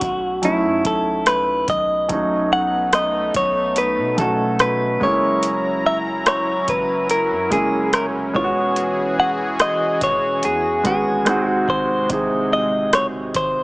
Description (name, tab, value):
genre	contemporary R&B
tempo	72 BPM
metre	4/4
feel	straight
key	unclear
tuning	A4 = 438 Hz
part	direct-recorded clean electric guitar	melody	0.0-13.6 s	E4 to F#5	-19 LUFS	equal	digital delay
part	warm grand piano	accompaniment	0.0-13.6 s	B#2 to G#4	-23 LUFS	right 1 dB	none
part	long sustained 808-style bass	bass	0.0-13.6 s	E1 to B2	-33 LUFS	equal	none
part	booming analog drum machine	drums	0.0-13.5 s	hi-hat, kick drum, rim click	-22 LUFS	equal	none
part	warm analog pad	sustained chords	2.1-13.6 s	B#2 to A#5	-26 LUFS	equal	chorus, tremolo
room	light reverb, digital ambience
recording	small speaker sound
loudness	-16 LUFS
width	side -23 dB against mid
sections	0.0-2.1 A section; 2.1-13.6 B section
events	none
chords	0.0 B7sus4; 2.1 B9; 5.0 F#7; 8.3 E69; 11.3 G#7